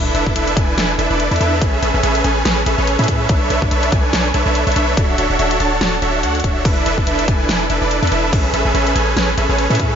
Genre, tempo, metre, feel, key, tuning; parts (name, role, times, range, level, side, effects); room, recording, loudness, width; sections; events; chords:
future bass; 143 BPM; 4/4; swing 56% on 16ths, half-time; A4 = 441 Hz
supersaw chords; riff; 0.0-10.0 s; C#4 to A5; -16 LUFS; right 1 dB; sidechain pumping, ping-pong delay
warm 808-style bass; bass; 0.0-10.0 s; D1 to A2; -20 LUFS; equal; sidechain pumping
dubstep drum kit; drums; 0.1-9.9 s; crash cymbal, hi-hat, snare drum; -23 LUFS; equal
electronic kick drum; drums; 0.3-9.9 s; -18 LUFS; equal
light reverb, digital ambience; nothing above 7.5 kHz; -14 LUFS; side -8 dB against mid
0.0-10.0 A section
0.0 E7sus4; 1.6 Amaj9; 3.3 Bm11; 5.0 Dmaj9; 6.7 E7sus4; 8.3 Amaj9